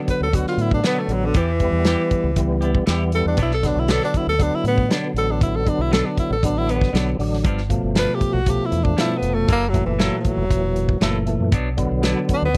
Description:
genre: straight-eighth soul blues.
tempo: 118 BPM.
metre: 4/4.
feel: straight.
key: B minor.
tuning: A4 = 445 Hz.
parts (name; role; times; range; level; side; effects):
percussive tonewheel organ; accompaniment; 0.0-12.6 s; A#2 to D4; -26 LUFS; equal; slow rotary speaker, overdrive, chorus vibrato.
warm tenor saxophone; melody; 0.1-12.6 s; D3 to B4; -25 LUFS; equal; none.
warm soul drum kit; drums; 0.1-12.6 s; hi-hat, kick drum, snare drum; -23 LUFS; equal; none.
deep dub fingered electric bass; bass; 0.2-12.6 s; E1 to A2; -26 LUFS; equal; none.
clean electric guitar; stabs; 0.8-12.2 s; G2 to A4; -32 LUFS; equal; spring reverb.
room: little or no reverb.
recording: dry, close 1970s-style studio recording.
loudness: -20 LUFS.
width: mono.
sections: 0.0-12.6 A section.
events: tenor saxophone solo 0.0-12.6.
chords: 0.0 Bm; 1.4 Em; 3.4 Bm; 7.5 G7; 9.5 F#7#9; 11.5 Bm.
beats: 0.34 0.85 | 1.36 1.86 2.37 2.88 | 3.39 3.90 4.40 4.91 | 5.42 5.93 6.43 6.94 | 7.45 7.96 8.47 8.98 | 9.49 10.00 10.51 11.02 | 11.53 12.04 12.54.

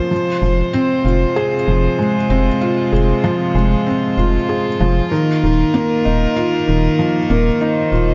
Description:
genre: piano and strings electronica.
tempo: 96 BPM.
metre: 4/4.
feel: straight.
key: F minor.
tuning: A4 = 442 Hz.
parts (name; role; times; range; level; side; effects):
rich string quartet; sustained chords; 0.0-8.1 s; C3 to C5; -23 LUFS; equal; none.
felt-muted upright piano; riff; 0.0-8.1 s; Eb3 to Ab4; -18 LUFS; equal; tape echo.
round analog bass; bass; 0.4-8.1 s; Eb1 to F1; -19 LUFS; equal; none.
room: moderate lush hall reverb, RT60 2.5 s.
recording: dark, warm production, nothing above 7.6 kHz.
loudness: -16 LUFS.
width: mono.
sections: 0.0-8.1 A section.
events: none.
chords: 0.1 Fm; 5.1 Ebsus2.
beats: | 0.11 0.74 1.36 1.99 | 2.61 3.24 3.86 4.49 | 5.11 5.74 6.36 6.99 | 7.61.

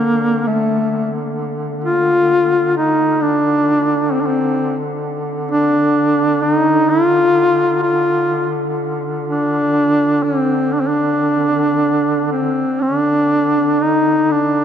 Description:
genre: caucasian folk, Caucasian lament.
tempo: 55-67 BPM.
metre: 4/4.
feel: rubato.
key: D phrygian.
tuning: A4 = 440 Hz.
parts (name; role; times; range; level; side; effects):
warm duduk; melody; 0.0-14.6 s; A3 to F4; -14 LUFS; equal; none.
mellow duduk; drone; 0.0-14.6 s; D3; -23 LUFS; left 1 dB; none.
room: moderate cathedral reverb, RT60 6.2 s.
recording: dark, warm production.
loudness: -14 LUFS.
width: side -9 dB against mid.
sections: 0.0-12.8 A section; 12.8-14.6 B section.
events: none.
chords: none.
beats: 0.46 | 1.39 2.33 3.24 4.15 | 5.05 5.96 6.89 7.83 | 8.80 9.75 10.74 11.80 | 12.84 13.81.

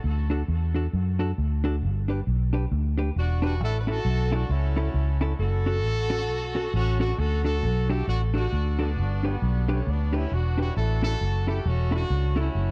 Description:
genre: ska.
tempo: 134 BPM.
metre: 4/4.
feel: swing 60% on 8ths.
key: D major.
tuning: A4 = 438 Hz.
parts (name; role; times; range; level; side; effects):
vintage muted fingered electric bass; bass; 0.0-12.7 s; E1 to F#2; -27 LUFS; equal; none.
hollow-body jazz guitar; accompaniment; 0.3-12.5 s; C#4 to B4; -34 LUFS; equal; none.
warm horn section; melody; 3.2-12.7 s; G3 to B4; -34 LUFS; equal; dub echo.
room: little or no reverb.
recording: dark, warm production.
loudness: -26 LUFS.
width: mono.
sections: 0.0-7.2 A section; 7.2-12.7 A section.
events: none.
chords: 0.0 D; 1.8 G; 3.6 A; 5.4 F#m; 7.2 D; 9.0 G; 10.8 A.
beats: | 0.04 0.48 0.93 1.38 | 1.82 2.27 2.72 3.16 | 3.61 4.06 4.50 4.95 | 5.40 5.84 6.29 6.74 | 7.19 7.63 8.08 8.53 | 8.98 9.42 9.87 10.32 | 10.76 11.21 11.65 12.10 | 12.55.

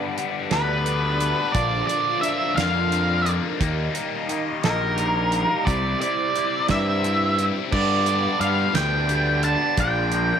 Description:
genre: psychedelic rock.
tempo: 58 BPM (dotted quarters).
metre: 6/8.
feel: straight.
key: unclear.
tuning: A4 = 440 Hz.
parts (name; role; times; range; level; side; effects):
warm studio string section; sustained chords; 0.0-10.4 s; D4 to Eb5; -30 LUFS; right 9 dB; none.
overdriven electric guitar; riff; 0.0-10.4 s; G2 to E4; -27 LUFS; left 10 dB; phaser.
damped 70s drum kit; drums; 0.2-10.3 s; crash cymbal, hi-hat, kick drum, snare drum; -27 LUFS; right 3 dB; none.
octave-fuzz lead guitar; melody; 0.5-10.4 s; Bb4 to A5; -23 LUFS; right 1 dB; distortion, slapback echo.
fuzz picked electric bass; bass; 0.5-10.3 s; Bb1 to G2; -25 LUFS; equal; overdrive.
room: light reverb, small room ambience.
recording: 1960s-style stereo with parts hard left and right.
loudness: -20 LUFS.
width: side -8 dB against mid.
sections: 0.0-7.7 A section; 7.7-10.4 B section.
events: none.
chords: 0.0 G; 1.5 Bb; 3.6 Eb; 5.7 Cadd9; 7.7 G; 9.8 Bb.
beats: 0.51 | 1.54 2.58 | 3.61 4.64 | 5.67 6.70 | 7.72 8.75 | 9.78.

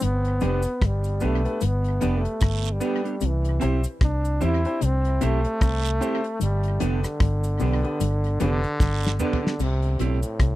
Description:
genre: roots reggae.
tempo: 75 BPM.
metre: 4/4.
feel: swing 59% on 16ths.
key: C major.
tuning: A4 = 444 Hz.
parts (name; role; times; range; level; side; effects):
clear trombone; melody; 0.0-10.6 s; A2 to E4; -28 LUFS; equal; tube saturation, tape echo.
clean electric guitar; riff; 0.0-10.6 s; F2 to E3; -32 LUFS; left 8 dB; tremolo.
vintage muted fingered electric bass; bass; 0.0-10.6 s; F1 to E2; -23 LUFS; equal; none.
damped 70s drum kit; drums; 0.0-10.6 s; crash cymbal, hi-hat, kick drum, rim click, snare drum, toms; -24 LUFS; equal; tape echo.
cabasa and guiro; percussion; 0.0-10.4 s; none; -37 LUFS; right 7 dB; none.
mellow electric guitar; accompaniment; 0.4-10.2 s; B3 to G4; -31 LUFS; right 7 dB; tape echo.
warm baby grand piano; stabs; 0.4-9.4 s; B3 to C5; -31 LUFS; left 3 dB; none.
room: little or no reverb.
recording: dry, close 1970s-style studio recording.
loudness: -21 LUFS.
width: side -16 dB against mid.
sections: 0.0-9.6 A section.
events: trombone solo 0.0-9.6; drum fill 8.8-9.6.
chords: 0.0 G; 3.2 C; 6.4 G; 9.6 C.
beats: | 0.02 0.82 1.62 2.42 | 3.21 4.01 4.81 5.61 | 6.41 7.21 8.00 8.80 | 9.60 10.40.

